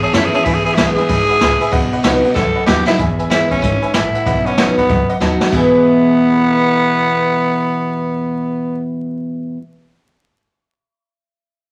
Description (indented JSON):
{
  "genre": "rockabilly",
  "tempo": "189 BPM",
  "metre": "4/4",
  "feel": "swing 63% on 8ths",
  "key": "E major",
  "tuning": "A4 = 441 Hz",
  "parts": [
    { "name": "growling tenor saxophone", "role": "melody", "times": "0.0-8.8 s", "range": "B3 to A4", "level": "-19 LUFS", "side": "equal", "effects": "none" },
    { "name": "picked steel-string acoustic guitar", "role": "accompaniment", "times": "0.0-9.6 s", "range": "E2 to F#4", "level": "-19 LUFS", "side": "equal", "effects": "none" },
    { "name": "tack piano", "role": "accompaniment", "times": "0.0-9.5 s", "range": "B4 to A5", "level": "-25 LUFS", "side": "equal", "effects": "none" },
    { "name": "upright bass", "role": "bass", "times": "0.0-9.5 s", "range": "G#1 to F#2", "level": "-27 LUFS", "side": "equal", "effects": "none" },
    { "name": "jazz brush drum kit", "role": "drums", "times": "0.0-5.6 s", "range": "crash cymbal, hi-hat, kick drum, ride cymbal, snare drum", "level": "-20 LUFS", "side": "equal", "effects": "none" }
  ],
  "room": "moderate large studio reverb, RT60 0.8 s",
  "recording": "vinyl crackle",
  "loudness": "-15 LUFS",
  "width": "mono",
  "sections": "0.0-3.0 A section; 3.0-5.5 B section; 5.5-8.1 C section",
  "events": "drum fill 2.4-3.0, 5.2-5.5",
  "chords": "0.5 E; 1.7 B; 3.0 E; 4.3 B; 5.5 E"
}